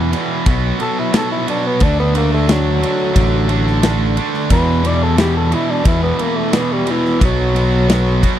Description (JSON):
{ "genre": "classic rock", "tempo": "89 BPM", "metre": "4/4", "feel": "straight", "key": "unclear", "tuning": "A4 = 440 Hz", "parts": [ { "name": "growling tenor saxophone", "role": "melody", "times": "0.0-8.4 s", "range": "E3 to D5", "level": "-20 LUFS", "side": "left 1 dB", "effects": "none" }, { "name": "cranked stack guitar", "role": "riff", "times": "0.0-8.4 s", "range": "E2 to D4", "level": "-20 LUFS", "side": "right 11 dB", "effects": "overdrive" }, { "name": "tight distorted guitar", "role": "riff", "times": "0.0-8.4 s", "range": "E2 to D4", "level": "-23 LUFS", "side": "left 15 dB", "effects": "distortion" }, { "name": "growling fingered electric bass", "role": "bass", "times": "0.0-8.2 s", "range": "A1 to E2", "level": "-16 LUFS", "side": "left 1 dB", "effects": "overdrive" }, { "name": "big rock drum kit", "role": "drums", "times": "0.1-8.4 s", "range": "kick drum, ride cymbal, snare drum", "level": "-18 LUFS", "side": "left 1 dB", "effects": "none" } ], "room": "little or no reverb", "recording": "dry, close 1970s-style studio recording", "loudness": "-13 LUFS", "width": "side -11 dB against mid", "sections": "0.0-8.4 A section", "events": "tenor saxophone solo 0.0-8.4", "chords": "0.5 B5; 1.8 D; 4.5 E5; 7.2 B5" }